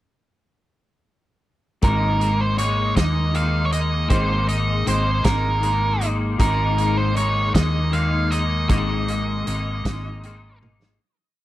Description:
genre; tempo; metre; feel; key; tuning
indie rock; 52 BPM (dotted quarters); 6/8; straight; unclear; A4 = 441 Hz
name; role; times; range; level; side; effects
octave-fuzz lead guitar; melody; 1.8-10.6 s; Bb4 to F5; -24 LUFS; right 3 dB; distortion
twangy electric guitar; riff; 1.8-11.0 s; Ab2 to Eb4; -25 LUFS; left 3 dB; ensemble chorus
hollow-body short-scale fingered electric bass; bass; 1.8-11.0 s; Ab1 to Eb2; -22 LUFS; equal; none
loose indie drum kit; drums; 1.8-11.0 s; hi-hat, kick drum, snare drum, toms; -23 LUFS; equal; none
room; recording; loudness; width
studio ambience; none; -18 LUFS; side -15 dB against mid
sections
1.8-11.0 verse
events
fade-out 8.7-11.0; drum fill 10.6-11.0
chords
1.8 Absus2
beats
| 1.83 2.97 | 4.11 5.25 | 6.40 7.55 | 8.70 9.85

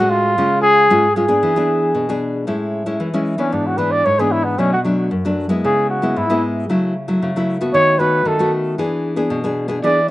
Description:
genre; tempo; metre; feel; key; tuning
samba; 114 BPM; 4/4; straight; A major; A4 = 440 Hz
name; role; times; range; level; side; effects
dark trumpet; melody; 0.0-10.1 s; B3 to D5; -15 LUFS; equal; slapback echo
nylon-string guitar; accompaniment; 0.0-10.1 s; F#2 to G#4; -18 LUFS; left 1 dB; none
room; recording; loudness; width
little or no reverb; recorded outdoors, with no room sound, nothing above 10.5 kHz; -15 LUFS; side -16 dB against mid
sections
0.0-2.5 A section; 2.5-10.1 B section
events
trumpet solo 2.5-10.1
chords
0.4 C#; 1.4 E7; 2.5 Amaj7; 3.5 E7/G#; 4.6 Bm7; 5.6 C#m7; 6.7 F#m7/C#; 7.7 B7/D#; 8.8 E7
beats
| 0.38 0.90 1.43 1.95 | 2.48 3.00 3.53 4.05 | 4.58 5.10 5.63 6.15 | 6.68 7.20 7.73 8.25 | 8.78 9.30 9.83

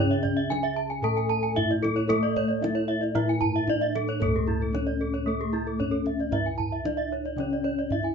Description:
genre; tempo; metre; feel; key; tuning
Balinese gamelan; 113 BPM; 4/4; straight; C# pelog; A4 = 440 Hz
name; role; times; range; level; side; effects
gamelan-type bronze metallophone; melody; 0.0-8.1 s; A3 to A4; -29 LUFS; left 1 dB; none
gamelan-type bronze metallophone; accompaniment; 0.0-8.1 s; C#3 to A3; -34 LUFS; equal; none
gamelan-type bronze metallophone; arpeggios; 0.0-8.0 s; G#4 to A5; -30 LUFS; left 1 dB; none
gamelan-type bossed gongs; bass; 0.0-8.1 s; C#2 to A4; -32 LUFS; left 2 dB; none
kendang; percussion; 0.1-8.1 s; none; -32 LUFS; right 4 dB; none
gamelan-type bronze metallophone; arpeggios; 0.2-8.1 s; E4 to A5; -32 LUFS; right 7 dB; none
room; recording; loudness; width
wet small room reverb, RT60 0.6 s; band playing live in one room, nothing above 7.5 kHz; -24 LUFS; side -6 dB against mid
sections
0.0-8.1 A section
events
none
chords
none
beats
0.49 1.02 1.55 | 2.08 2.61 3.14 3.67 | 4.20 4.73 5.26 5.79 | 6.32 6.85 7.38 7.91

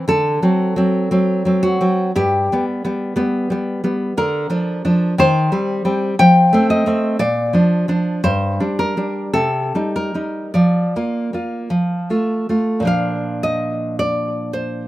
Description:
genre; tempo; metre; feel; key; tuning
romantic piece for solo classical guitar; 49-60 BPM; 2/4; rubato; G major, Bb major from 4.1 s; A4 = 443 Hz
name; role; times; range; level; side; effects
nylon-string guitar; solo; 0.0-14.9 s; G2 to G5; -16 LUFS; equal; none
room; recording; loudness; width
little or no reverb; recorded outdoors, with no room sound; -15 LUFS; side -15 dB against mid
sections
0.0-12.9 A section; 12.9-14.9 B section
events
none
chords
0.0 D7; 2.1 G; 4.1 Bb/D; 5.1 Cm/Eb; 6.2 F; 7.2 Bb; 8.2 Gm; 9.3 Cm7; 10.5 Bb/F; 11.7 F; 12.9 Bb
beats
| 0.04 1.07 | 2.10 3.14 | 4.14 5.15 | 6.15 7.18 | 8.23 9.33 | 10.53 11.71 | 12.87 13.97

